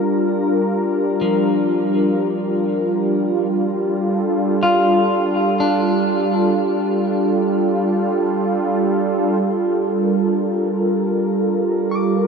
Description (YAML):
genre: ambient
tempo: free time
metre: none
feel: none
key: G minor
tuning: A4 = 439 Hz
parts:
  - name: warm analog pad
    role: sustained chords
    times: 0.0-12.3 s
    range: G3 to Bb4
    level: -17 LUFS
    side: right 1 dB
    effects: chorus, shimmer reverb
  - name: clean electric guitar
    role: arpeggios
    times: 1.2-12.3 s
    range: F3 to D6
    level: -23 LUFS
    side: left 2 dB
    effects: diffuse ambient delay, shimmer reverb
room: wet huge ambient reverb, RT60 8.2 s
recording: in a vast, echoing space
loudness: -16 LUFS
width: side -5 dB against mid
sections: 0.0-9.4 A section; 9.4-12.3 B section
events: filter sweep on analog synth pad 0.0-9.4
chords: 0.0 Gm7; 3.6 Dm; 9.4 Gm9